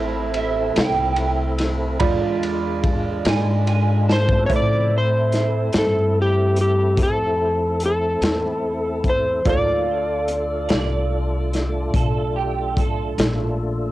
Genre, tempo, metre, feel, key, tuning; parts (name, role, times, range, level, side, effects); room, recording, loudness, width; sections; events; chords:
slow blues; 48 BPM (dotted quarters); 12/8; straight; A minor; A4 = 437 Hz
clear upright piano; accompaniment; 0.0-13.9 s; G#3 to B5; -27 LUFS; right 7 dB; cassette tape
tonewheel organ; sustained chords; 0.0-13.9 s; C#3 to D5; -27 LUFS; left 1 dB; slow rotary speaker, overdrive, chorus vibrato, cassette tape
upright bass; bass; 0.0-13.9 s; A1 to A2; -23 LUFS; left 1 dB; tube saturation
crunchy breakbeat drum kit; drums; 0.3-13.4 s; hi-hat, kick drum, ride cymbal, snare drum; -23 LUFS; left 1 dB; cassette tape
electric guitar through a small old amp; second line; 0.4-13.6 s; G4 to A5; -26 LUFS; right 7 dB; ensemble chorus, cassette tape
electric slide guitar; melody; 4.1-11.9 s; G4 to D5; -21 LUFS; left 1 dB; cassette tape
light reverb; home recording on cassette; -18 LUFS; side -16 dB against mid
0.0-4.5 A section; 4.5-13.9 B section
clean electric guitar solo 0.0-4.5; drum fill 4.1-4.5
0.0 Am; 2.0 E7b9; 4.5 Am; 9.5 Dm